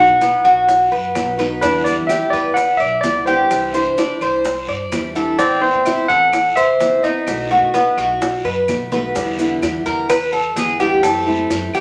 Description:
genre	latin, Cuban son and guajira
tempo	127 BPM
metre	4/4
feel	straight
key	E minor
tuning	A4 = 436 Hz
part	overdriven tine electric piano	melody	0.0-8.6 s	B4 to F#5	-20 LUFS	equal	medium tremolo
part	picked steel-string acoustic guitar	accompaniment	0.0-11.8 s	B2 to F#4	-25 LUFS	equal	none
part	Cuban tres	arpeggios	0.0-11.8 s	B3 to D5	-20 LUFS	equal	none
part	upright bass	bass	0.0-11.8 s	A1 to E3	-35 LUFS	equal	none
part	bongos	percussion	0.2-11.8 s	none	-28 LUFS	equal	none
part	guiro	percussion	0.2-11.8 s	none	-36 LUFS	equal	none
part	maracas	percussion	0.2-11.8 s	none	-39 LUFS	equal	none
part	claves	percussion	0.4-11.8 s	none	-36 LUFS	equal	none
room	wet studio reverb, RT60 0.8 s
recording	none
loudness	-17 LUFS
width	mono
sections	0.0-9.2 A section; 9.2-11.8 B section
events	drum fill 8.2-9.2; Cuban tres solo 9.2-11.8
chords	0.0 B; 1.6 Em7; 3.5 Cadd9; 5.4 Amadd9; 7.3 B7; 9.2 Em7; 11.0 F#m7b5

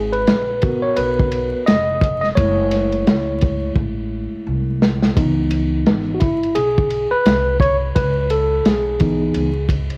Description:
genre	hip hop, jazz-hop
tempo	86 BPM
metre	4/4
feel	swing 59% on 16ths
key	C# minor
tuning	A4 = 440 Hz
part	tine electric piano	accompaniment	0.0-9.7 s	E3 to D#5	-21 LUFS	equal	cassette tape
part	upright bass	bass	0.0-9.9 s	E#1 to C#2	-26 LUFS	equal	none
part	vintage drum kit	drums	0.1-10.0 s	hi-hat, kick drum, ride cymbal, snare drum	-21 LUFS	equal	none
room	light reverb, studio reverb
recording	home recording on cassette, vinyl crackle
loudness	-18 LUFS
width	mono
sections	0.0-5.2 A section; 5.2-10.0 B section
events	tine electric piano solo 0.0-5.2, 5.2-10.0; drum fill 3.8-5.2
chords	0.0 G#m9; 2.4 F#m9; 5.2 C#m9

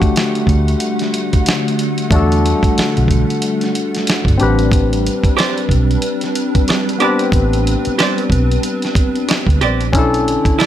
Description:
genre	R&B, neo-soul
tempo	92 BPM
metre	4/4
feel	swing 60% on 16ths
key	unclear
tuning	A4 = 436 Hz
part	barky tine electric piano	accompaniment	0.0-10.7 s	A3 to B4	-18 LUFS	left 4 dB	overdrive
part	hollow soft pad	sustained chords	0.0-10.7 s	D3 to F#5	-21 LUFS	right 2 dB	ensemble chorus
part	vintage muted fingered electric bass	bass	0.0-10.5 s	G1 to E2	-16 LUFS	right 1 dB	none
part	dusty soul sampler-style drum kit	drums	0.0-10.7 s	hi-hat, kick drum, snare drum	-17 LUFS	right 1 dB	none
part	vintage hollow-body jazz guitar	second line	5.4-10.7 s	E4 to D5	-18 LUFS	right 7 dB	none
room	little or no reverb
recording	none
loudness	-13 LUFS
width	side -11 dB against mid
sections	0.0-10.7 A section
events	none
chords	0.0 Em11 (rootless); 4.4 Am11; 9.9 Bm11

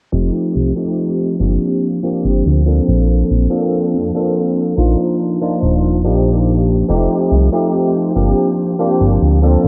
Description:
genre	vaporwave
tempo	71 BPM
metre	4/4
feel	straight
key	unclear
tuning	A4 = 441 Hz
part	barky tine electric piano	accompaniment	0.1-9.7 s	F3 to A4	-17 LUFS	equal	ensemble chorus, tape echo
part	chorused synth bass	bass	0.1-9.7 s	Eb1 to F2	-16 LUFS	equal	none
room	light reverb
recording	worn, warbling old tape, cassette tape, warbly pitch drift, low-pass filter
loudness	-15 LUFS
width	mono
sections	0.1-9.7 A section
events	none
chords	0.1 F9; 1.4 Gm11; 3.1 Bbmaj9; 5.2 Ebmaj9; 6.9 F9; 8.2 Gm11

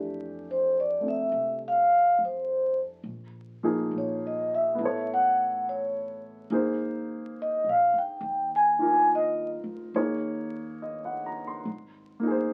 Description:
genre	jazz ballad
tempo	70 BPM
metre	4/4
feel	swing 66% on 8ths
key	unclear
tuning	A4 = 440 Hz
part	warm baby grand piano	accompaniment	0.0-12.5 s	E3 to C6	-33 LUFS	equal	none
part	upright bass	bass	0.0-12.5 s	G1 to F2	-47 LUFS	equal	none
part	vibraphone with soft mallets	melody	0.5-9.5 s	C5 to Ab5	-26 LUFS	equal	none
room	moderate studio reverb, RT60 0.5 s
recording	very old 78 rpm record, vinyl crackle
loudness	-27 LUFS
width	mono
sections	0.0-12.5 A section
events	vibraphone solo 0.0-12.5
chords	0.0 F6; 3.1 Bb5; 4.8 A; 6.5 Ab69; 9.9 Eb5; 11.7 Abadd9

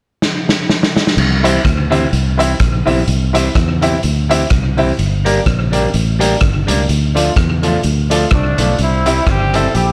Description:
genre	ska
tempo	126 BPM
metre	4/4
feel	swing 57% on 8ths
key	C mixolydian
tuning	A4 = 440 Hz
part	raw garage drum kit	drums	0.2-9.9 s	crash cymbal, hi-hat, kick drum, rim click, snare drum	-19 LUFS	equal	slapback echo
part	fingered electric bass	bass	1.2-9.9 s	G1 to E2	-18 LUFS	equal	none
part	semi-hollow electric guitar	accompaniment	1.4-9.7 s	E3 to G4	-22 LUFS	equal	none
part	warm upright piano	stabs	1.4-9.7 s	D4 to E5	-21 LUFS	equal	plate reverb
part	warm horn section	melody	8.3-9.9 s	F3 to A4	-20 LUFS	equal	slapback echo
room	light reverb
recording	none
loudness	-14 LUFS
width	mono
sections	0.0-1.2 A section; 1.2-8.8 B section; 8.8-9.9 C section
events	drum fill 0.2-1.2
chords	0.0 N.C.; 1.2 C; 5.0 Gm; 6.9 Dm; 8.8 C

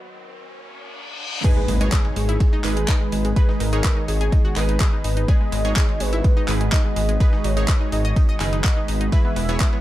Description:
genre	progressive house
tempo	125 BPM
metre	4/4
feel	straight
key	G# minor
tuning	A4 = 441 Hz
part	evolving wavetable pad	sustained chords	0.0-9.8 s	D#3 to G#4	-31 LUFS	right 1 dB	phaser, built-in reverb, sidechain pumping
part	riser, reverse cymbal and impact	sound effects	0.1-3.4 s	none	-31 LUFS	equal	none
part	warm velvety synth lead	melody	1.4-9.8 s	G#4 to E5	-30 LUFS	equal	chorus, sidechain pumping, digital delay
part	analog pluck	arpeggios	1.4-9.8 s	G#3 to F#5	-31 LUFS	left 2 dB	chorus, sidechain pumping, dub echo
part	supersaw stab	stabs	1.4-9.8 s	E3 to C#5	-30 LUFS	right 3 dB	sidechain pumping, dub echo
part	breakbeat sampler-style drum kit	drums	1.4-9.8 s	ride cymbal, snare drum	-41 LUFS	right 2 dB	none
part	electronic kick drum	drums	1.4-9.7 s	none	-18 LUFS	equal	overdrive
part	pop drum kit	drums	1.4-9.7 s	crash cymbal, handclaps, hi-hat	-28 LUFS	equal	overdrive
part	dark detuned saw bass	bass	1.7-9.6 s	E1 to G#1	-22 LUFS	equal	tube saturation, sidechain pumping
room	little or no reverb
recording	high-pass filter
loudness	-17 LUFS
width	side -15 dB against mid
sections	0.0-1.4 A section; 1.4-9.8 B section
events	break 0.0-1.4; build-up 0.0-1.4; filter sweep on ambient pad 0.0-1.4; filter sweep 0.0-1.4; riser 0.1-1.4; reverse cymbal 0.5-1.4; drop 1.4-9.8; impact 1.4-3.4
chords	0.0 B/D# (rootless); 1.4 G#m; 9.1 E

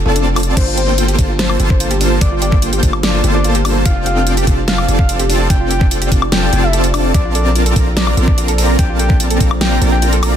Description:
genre	future bass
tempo	146 BPM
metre	4/4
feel	half-time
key	unclear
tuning	A4 = 440 Hz
part	long sustained 808-style bass	bass	0.0-10.4 s	F1 to Bb1	-16 LUFS	equal	sidechain pumping
part	soft octave-layered synth lead	melody	0.1-10.0 s	A4 to G5	-23 LUFS	left 3 dB	chorus, sidechain pumping, ping-pong delay
part	soft round pluck	arpeggios	0.1-10.4 s	D4 to D5	-24 LUFS	right 2 dB	chorus, sidechain pumping, digital delay
part	dense compressed supersaw	riff	0.1-10.4 s	Bb3 to Bb5	-18 LUFS	equal	sidechain pumping, digital delay
part	dubstep drum kit	drums	0.2-10.3 s	crash cymbal, hi-hat, snare drum, woodblock	-19 LUFS	left 1 dB	studio reverb
part	ethereal airy pad	sustained chords	2.0-10.4 s	G3 to D5	-26 LUFS	equal	ensemble chorus, built-in reverb, tremolo, sidechain pumping
part	electronic kick drum	drums	0.6-9.5 s	none	-14 LUFS	equal	studio reverb
room	little or no reverb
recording	dense, heavily limited modern master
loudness	-11 LUFS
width	side -9 dB against mid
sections	0.6-10.4 A section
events	break 0.0-0.6; drop 0.6-10.4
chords	0.0 F6; 0.6 Gm11; 3.9 F69; 7.1 Bbmaj9

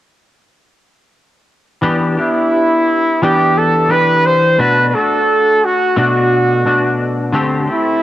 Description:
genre	indie pop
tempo	87 BPM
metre	4/4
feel	straight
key	E minor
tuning	A4 = 437 Hz
part	semi-hollow electric guitar	accompaniment	1.8-8.0 s	B2 to G4	-16 LUFS	left 1 dB	ensemble chorus, vibrato effect, plate reverb
part	warm trumpet	melody	2.2-8.0 s	E4 to C5	-12 LUFS	right 1 dB	lush chorus, cassette tape, plate reverb
room	moderate booth ambience, RT60 0.3 s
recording	home recording on cassette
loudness	-11 LUFS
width	side -13 dB against mid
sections	1.8-8.0 A section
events	none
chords	1.8 Em7; 4.6 Bm7; 7.3 D7sus4

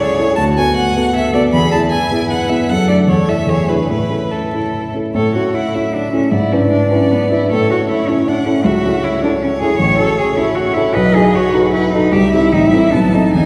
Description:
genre	quick classical-period movement for piano trio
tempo	154 BPM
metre	3/4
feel	rubato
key	A major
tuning	A4 = 439 Hz
part	clear violin	melody	0.0-13.5 s	A4 to B5	-23 LUFS	equal	none
part	rich cello	second line	0.0-13.5 s	B3 to C#5	-20 LUFS	equal	none
part	dark grand piano	accompaniment	0.0-13.5 s	A1 to B4	-17 LUFS	equal	none
room	wet concert hall reverb, RT60 2.5 s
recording	heard from further back in the room, vinyl crackle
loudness	-14 LUFS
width	mono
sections	0.0-5.1 A section; 5.1-13.5 A section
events	none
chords	0.4 Bm7/D; 1.5 E; 2.7 D/F#; 3.1 A/E; 3.5 E7; 3.9 A; 6.3 E7/G#; 7.5 A; 8.6 A/C#; 9.8 F#m/A; 11.0 B7; 12.1 C; 12.5 Am; 12.9 B7b9

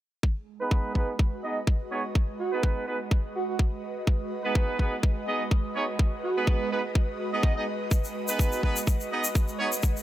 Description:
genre	bass house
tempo	125 BPM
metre	4/4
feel	swing 54% on 16ths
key	G# minor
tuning	A4 = 441 Hz
part	electronic kick drum	drums	0.2-9.9 s	none	-24 LUFS	equal	overdrive
part	airy breathy pad	texture	0.5-10.0 s	G#3 to D#5	-34 LUFS	right 1 dB	chorus, phaser, sidechain pumping
part	warm horn section	stabs	0.6-9.7 s	B3 to D#5	-31 LUFS	right 2 dB	sidechain pumping, low-pass filter, digital delay
part	breathy flute-like synth lead	melody	2.4-6.4 s	F#4	-32 LUFS	right 4 dB	lush chorus, digital delay
part	tube shaker	percussion	7.9-10.0 s	none	-32 LUFS	left 3 dB	none
room	light reverb, small room ambience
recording	none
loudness	-25 LUFS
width	side -14 dB against mid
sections	0.2-10.0 A section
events	filter sweep on horn section 0.2-10.0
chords	0.2 G#m

